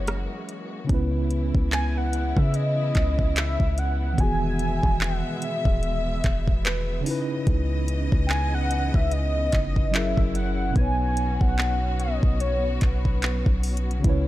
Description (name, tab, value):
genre	contemporary R&B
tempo	73 BPM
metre	4/4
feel	swing 58% on 16ths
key	C# dorian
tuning	A4 = 441 Hz
part	warm velvety synth lead	melody	0.0-13.6 s	B4 to G#5	-29 LUFS	left 1 dB	chorus, tape echo
part	mellow tine electric piano	accompaniment	0.0-14.3 s	B2 to C#5	-30 LUFS	right 1 dB	medium stereo tremolo
part	rich studio string section	sustained chords	0.0-14.3 s	B2 to E5	-34 LUFS	left 2 dB	none
part	warm 808-style bass	bass	0.0-14.3 s	D#1 to C#3	-25 LUFS	equal	none
part	smooth R&B drum kit	drums	0.1-14.3 s	handclaps, hi-hat, kick drum, rim click	-24 LUFS	equal	none
room	little or no reverb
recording	dark, warm production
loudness	-21 LUFS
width	side -15 dB against mid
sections	0.9-14.3 A section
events	tine electric piano fill 6.2-7.5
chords	0.0 F#9; 0.9 C#m9; 4.2 Emaj7; 7.1 C#m9; 9.9 F#7; 10.8 B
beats	0.07 | 0.90 1.72 2.54 3.36 | 4.18 5.00 5.83 6.65 | 7.47 8.29 9.11 9.94 | 10.76 11.58 12.40 13.22 | 14.05